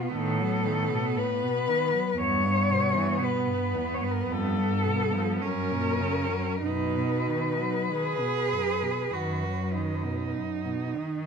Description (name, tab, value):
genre	classical, lyrical piece for cello ensemble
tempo	46-60 BPM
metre	4/4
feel	rubato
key	B major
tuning	A4 = 441 Hz
part	rich cello	melody	0.0-10.4 s	F#4 to C#5	-29 LUFS	left 5 dB	none
part	clear cello	second line	0.0-11.3 s	B3 to G#4	-31 LUFS	right 11 dB	none
part	warm cello	accompaniment	0.0-11.3 s	E2 to F#3	-32 LUFS	left 1 dB	none
part	rich cello	bass	0.1-10.1 s	F#2 to B2	-31 LUFS	right 1 dB	none
room	light reverb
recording	minimal, uncompressed stereo recording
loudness	-25 LUFS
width	side -6 dB against mid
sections	0.0-11.3 A section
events	none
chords	0.0 B7/A; 2.2 Em; 4.3 G7/F; 5.4 F#; 6.6 B/F#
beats	0.13 1.18 | 2.20 3.23 4.29 5.42 | 6.63 7.89 9.13 10.34